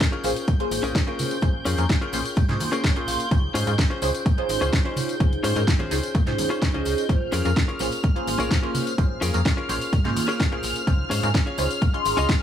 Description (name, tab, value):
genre	filtered disco house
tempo	127 BPM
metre	4/4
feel	straight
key	Bb dorian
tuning	A4 = 440 Hz
part	string machine, full ensemble	sustained chords	0.0-12.4 s	F6 to G6	-32 LUFS	left 1 dB	ensemble chorus, sidechain pumping
part	electronic kick drum	drums	0.0-12.4 s	none	-21 LUFS	equal	overdrive, studio reverb
part	house drum kit	drums	0.0-12.4 s	hi-hat, snare drum, tambourine	-30 LUFS	left 2 dB	overdrive, sidechain pumping on hats, studio reverb, sidechain pumping on perc
part	tambourine and congas	percussion	0.0-12.4 s	none	-35 LUFS	right 3 dB	sidechain pumping on perc
part	direct-recorded clean electric guitar	riff	0.1-12.3 s	Db4 to F5	-29 LUFS	left 2 dB	sidechain pumping
part	funky polysynth comp	accompaniment	0.2-12.4 s	Bb3 to C6	-28 LUFS	right 1 dB	chorus, phaser, sidechain pumping
part	slap-like FM bass	bass	0.2-12.3 s	Ab1 to Bb2	-26 LUFS	equal	tube saturation, sidechain pumping
room	digital ambience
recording	none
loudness	-20 LUFS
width	side -10 dB against mid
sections	0.0-12.4 A section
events	clean electric guitar fill 2.6-3.3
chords	0.0 Bbm7; 3.3 Dbmaj7; 7.1 Bbm7; 10.9 Dbmaj7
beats	0.01 0.48 0.95 | 1.42 1.90 2.37 2.84 | 3.31 3.79 4.26 4.73 | 5.20 5.68 6.15 6.62 | 7.09 7.57 8.04 8.51 | 8.98 9.46 9.93 10.40 | 10.87 11.35 11.82 12.29